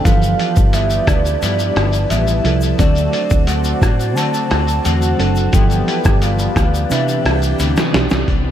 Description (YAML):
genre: indie pop, bedroom pop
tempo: 88 BPM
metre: 4/4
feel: straight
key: C major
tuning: A4 = 440 Hz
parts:
  - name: soft octave-layered synth lead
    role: melody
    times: 0.0-7.6 s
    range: D5 to A5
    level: -22 LUFS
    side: right 2 dB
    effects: tremolo, wide subtle chorus, ping-pong delay
  - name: clean electric guitar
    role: accompaniment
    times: 0.0-8.5 s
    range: G2 to F#4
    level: -23 LUFS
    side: left 6 dB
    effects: analog chorus, warbly pitch drift
  - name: reed electric piano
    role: accompaniment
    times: 0.0-8.3 s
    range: E3 to B4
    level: -24 LUFS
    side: right 6 dB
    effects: none
  - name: phased analog pad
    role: sustained chords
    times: 0.0-8.3 s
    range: D4 to A5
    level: -26 LUFS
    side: left 1 dB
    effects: phaser, chorus
  - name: vintage muted fingered electric bass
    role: bass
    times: 0.1-8.5 s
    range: F#1 to D3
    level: -18 LUFS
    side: equal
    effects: none
  - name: lo-fi sampler-style drum kit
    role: drums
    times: 0.1-8.4 s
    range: hi-hat, kick drum, rim click, shaker, snare drum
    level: -17 LUFS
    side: equal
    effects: none
  - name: egg shaker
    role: percussion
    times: 0.1-8.3 s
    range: none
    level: -37 LUFS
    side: left 7 dB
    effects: none
room: light reverb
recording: none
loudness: -13 LUFS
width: side -10 dB against mid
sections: 0.0-8.3 A section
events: drum fill 7.6-8.3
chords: 0.1 G13; 2.8 D7; 5.5 G13; 6.9 Cmaj9